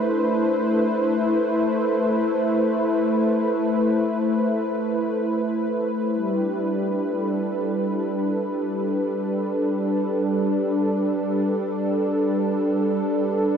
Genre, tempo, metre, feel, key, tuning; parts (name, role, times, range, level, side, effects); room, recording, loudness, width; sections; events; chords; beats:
ambient; free time; G major; A4 = 440 Hz
warm analog pad; solo; 0.0-13.6 s; G3 to C5; -20 LUFS; equal; chorus, tape echo
wet huge ambient reverb, RT60 7.9 s; dark, warm production; -20 LUFS; side -7 dB against mid
0.0-13.6 A section
0.0 Amadd9; 6.2 G
free time